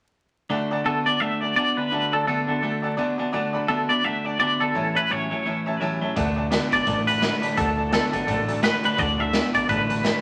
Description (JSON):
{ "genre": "rockabilly", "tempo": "170 BPM", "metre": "4/4", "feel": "swing 58% on 8ths", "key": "D major", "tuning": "A4 = 440 Hz", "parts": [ { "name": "bright upright piano", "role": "accompaniment", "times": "0.5-10.2 s", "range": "C#5 to B5", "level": "-32 LUFS", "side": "equal", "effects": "none" }, { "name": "picked steel-string acoustic guitar", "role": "accompaniment", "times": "0.5-10.2 s", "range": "A2 to A4", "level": "-36 LUFS", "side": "equal", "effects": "none" }, { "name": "clean electric guitar", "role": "riff", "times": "0.5-10.2 s", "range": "A2 to B3", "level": "-30 LUFS", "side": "equal", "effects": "spring reverb" }, { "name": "twangy electric guitar", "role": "melody", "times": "0.9-10.2 s", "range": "A4 to E5", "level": "-26 LUFS", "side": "equal", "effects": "tremolo" }, { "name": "upright bass", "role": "bass", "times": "6.2-10.1 s", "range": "A1 to D2", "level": "-34 LUFS", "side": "equal", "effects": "none" }, { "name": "raw garage drum kit", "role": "drums", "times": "6.2-10.1 s", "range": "hi-hat, kick drum, snare drum", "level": "-28 LUFS", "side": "equal", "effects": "none" } ], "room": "moderate studio reverb, RT60 0.6 s", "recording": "vinyl crackle", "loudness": "-23 LUFS", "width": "mono", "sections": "0.5-6.2 A section; 6.2-10.2 B section", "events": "none", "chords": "0.5 D; 4.7 A7; 6.2 D" }